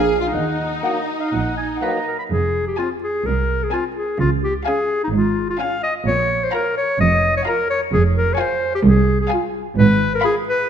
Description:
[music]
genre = cinematic, playful, whimsical film cue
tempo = 128 BPM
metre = 4/4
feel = straight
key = F minor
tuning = A4 = 440 Hz
[part]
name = rich studio violin section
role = melody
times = 0.0-10.6 s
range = D5 to Cb6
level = -29 LUFS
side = left 4 dB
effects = none
[part]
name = worn celesta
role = melody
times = 0.0-2.0 s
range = Eb5 to Ab5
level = -31 LUFS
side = left 5 dB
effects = none
[part]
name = clear oboe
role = second line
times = 0.0-2.2 s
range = Eb5 to Cb6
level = -28 LUFS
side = right 1 dB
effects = none
[part]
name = rich studio violin section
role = second line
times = 0.0-10.6 s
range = Eb4 to Ab5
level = -30 LUFS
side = left 2 dB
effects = none
[part]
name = rich studio viola section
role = accompaniment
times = 0.0-10.6 s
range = C4 to Ab4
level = -26 LUFS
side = right 3 dB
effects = none
[part]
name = rich studio cello section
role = bass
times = 0.0-10.1 s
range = C2 to Eb3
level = -20 LUFS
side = right 2 dB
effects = none
[part]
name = rich studio double bass section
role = bass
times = 0.0-10.1 s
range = F1 to Eb2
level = -22 LUFS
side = right 3 dB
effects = none
[part]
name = bright clarinet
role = second line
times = 0.8-10.7 s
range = Eb4 to F5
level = -20 LUFS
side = left 2 dB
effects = none
[part]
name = mellow hollow silver concert flute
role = second line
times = 0.8-1.9 s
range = Gb5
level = -32 LUFS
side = left 4 dB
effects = none
[part]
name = mellow bassoon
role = accompaniment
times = 0.8-2.0 s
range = Bb3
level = -29 LUFS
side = right 2 dB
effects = none
[part]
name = warm French horn section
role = sustained chords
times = 0.8-2.0 s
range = Gb3 to Eb4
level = -29 LUFS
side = left 4 dB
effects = none
[sound]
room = moderate scoring stage reverb, RT60 1.8 s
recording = none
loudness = -17 LUFS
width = side -8 dB against mid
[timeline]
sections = 0.0-2.3 A section; 2.3-10.7 B section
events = none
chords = 0.3 Ebm; 2.3 Fm; 4.2 Db; 6.1 Bb5; 7.9 Fm; 9.8 Fdim/Ab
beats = | 0.33 0.83 1.32 1.81 | 2.31 2.78 3.26 3.73 | 4.20 4.67 5.14 5.60 | 6.07 6.54 7.00 7.46 | 7.93 8.39 8.85 9.31 | 9.77 10.24

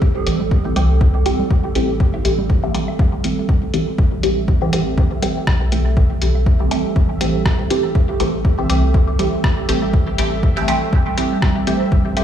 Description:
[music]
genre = dub techno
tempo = 121 BPM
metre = 4/4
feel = swing 55% on 16ths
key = A minor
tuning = A4 = 440 Hz
[part]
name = warbly tape-like pad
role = sustained chords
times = 0.0-12.2 s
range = G3 to A4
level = -25 LUFS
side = right 4 dB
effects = chorus, built-in reverb, sidechain pumping
[part]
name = electronic kick drum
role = drums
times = 0.0-12.0 s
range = none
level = -17 LUFS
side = equal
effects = small room ambience
[part]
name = filtered dub chord stab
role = stabs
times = 0.3-12.2 s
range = E3 to G4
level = -21 LUFS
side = right 1 dB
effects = phaser, sidechain pumping, dub echo
[part]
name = round analog bass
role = bass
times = 0.3-12.2 s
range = A1 to C2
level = -20 LUFS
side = equal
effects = sidechain pumping
[part]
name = lo-fi sampler-style drum kit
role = drums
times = 0.3-12.2 s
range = hi-hat, rim click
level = -27 LUFS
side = left 2 dB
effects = small room ambience, dub echo
[part]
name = congas and woodblock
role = percussion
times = 0.4-11.6 s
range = none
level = -30 LUFS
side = right 3 dB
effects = none
[part]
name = bubbling stepped-filter texture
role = texture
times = 4.0-12.2 s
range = E5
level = -32 LUFS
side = left 4 dB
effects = chorus, built-in reverb, sidechain pumping
[sound]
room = light reverb, digital ambience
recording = played on a big sound system in a bare room, large studio reverb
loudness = -15 LUFS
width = side -10 dB against mid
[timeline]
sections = 0.0-4.0 A section; 4.0-12.2 A section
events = filter sweep on synth stab 0.0-4.0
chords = 0.0 Am7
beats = | 0.02 0.51 1.01 1.51 | 2.00 2.50 2.99 3.49 | 3.98 4.48 4.98 5.47 | 5.97 6.46 6.96 7.46 | 7.95 8.45 8.94 9.44 | 9.94 10.43 10.93 11.42 | 11.92

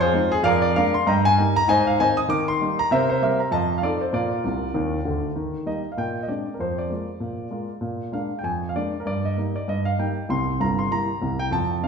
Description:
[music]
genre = jazz, stride piano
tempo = 195 BPM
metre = 4/4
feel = swing 58% on 8ths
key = Eb major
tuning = A4 = 440 Hz
[part]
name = warm grand piano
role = solo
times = 0.0-11.9 s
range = G1 to Eb6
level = -20 LUFS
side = equal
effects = none
[sound]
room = wet large studio reverb, RT60 1.5 s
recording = band playing live in one room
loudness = -21 LUFS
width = side -6 dB against mid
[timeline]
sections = 0.0-5.4 A section; 5.4-11.9 B section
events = grand piano fill 4.4-5.4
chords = 0.5 Bb7/F; 1.1 Eb/G; 1.7 Ab; 2.3 Eb; 2.9 C5; 3.5 F7; 4.1 Bb; 5.4 Eb; 6.0 Bb9; 6.6 Bb7/F; 7.8 Bb7; 8.4 Bb7/F; 9.1 Eb/G; 10.3 C7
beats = 0.15 | 0.45 0.76 1.07 1.37 | 1.68 1.99 2.29 2.60 | 2.91 3.21 3.52 3.83 | 4.13 4.44 4.75 5.05 | 5.36 5.67 5.98 6.29 | 6.59 6.90 7.21 7.52 | 7.83 8.14 8.45 8.75 | 9.06 9.37 9.68 9.99 | 10.29 10.60 10.91 11.22 | 11.53 11.84

